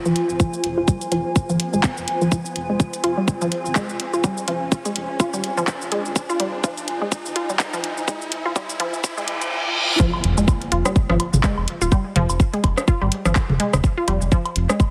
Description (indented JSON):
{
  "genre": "minimal techno",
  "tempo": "125 BPM",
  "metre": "4/4",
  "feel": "swing 57% on 16ths",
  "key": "F minor",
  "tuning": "A4 = 435 Hz",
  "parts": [
    { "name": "riser, reverse cymbal and impact", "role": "sound effects", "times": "0.2-11.9 s", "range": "none", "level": "-31 LUFS", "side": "equal", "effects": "none" },
    { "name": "granular cloud pad", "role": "texture", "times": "0.0-9.5 s", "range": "F4 to Ab5", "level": "-31 LUFS", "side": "equal", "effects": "built-in reverb, sidechain pumping" },
    { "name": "resonant blip pluck", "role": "riff", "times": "0.1-14.7 s", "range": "F3 to F4", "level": "-27 LUFS", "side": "equal", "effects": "chorus, sidechain pumping, delay" },
    { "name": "round analog bass", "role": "bass", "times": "0.1-14.7 s", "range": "Eb1 to Ab1", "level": "-26 LUFS", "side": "equal", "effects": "sidechain pumping" },
    { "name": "garage drum kit", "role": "drums", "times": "0.1-14.9 s", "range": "handclaps, hi-hat, shaker", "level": "-28 LUFS", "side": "equal", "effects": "none" },
    { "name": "electronic kick drum", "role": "drums", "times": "0.4-14.9 s", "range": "none", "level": "-20 LUFS", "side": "equal", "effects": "none" },
    { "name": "booming analog drum machine", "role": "percussion", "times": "10.1-14.9 s", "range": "rim click, toms, woodblock", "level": "-25 LUFS", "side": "equal", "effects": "overdrive" }
  ],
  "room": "moderate lush hall reverb, RT60 1.9 s, digital ambience",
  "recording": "heavily compressed radio sound, high-pass filter",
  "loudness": "-21 LUFS",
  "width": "mono",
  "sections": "0.0-10.0 A section; 10.0-14.9 B section",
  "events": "build-up 0.0-10.0; filter sweep on synth arpeggio sound 0.0-10.0; filter sweep 0.0-10.0; riser 0.3-10.0; reverse cymbal 9.0-10.0; drop 10.0-14.9; impact 10.0-11.9",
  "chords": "0.0 Fm"
}